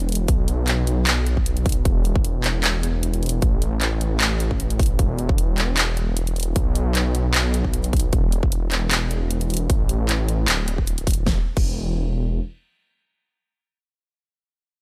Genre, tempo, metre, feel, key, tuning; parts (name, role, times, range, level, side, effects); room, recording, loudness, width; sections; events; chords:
future bass; 153 BPM; 4/4; swing 54% on 16ths, half-time; A4 = 439 Hz
detuned saw bass; bass; 0.0-12.4 s; D1 to B1; -24 LUFS; equal; chorus, sidechain pumping
big-room dance drum kit; drums; 0.0-11.7 s; crash cymbal, handclaps, hi-hat, snare drum; -26 LUFS; equal
electronic kick drum; drums; 0.3-11.7 s; -23 LUFS; equal
little or no reverb; -21 LUFS; mono
0.0-11.3 A section; 11.3-14.4 B section
drop 0.0-11.3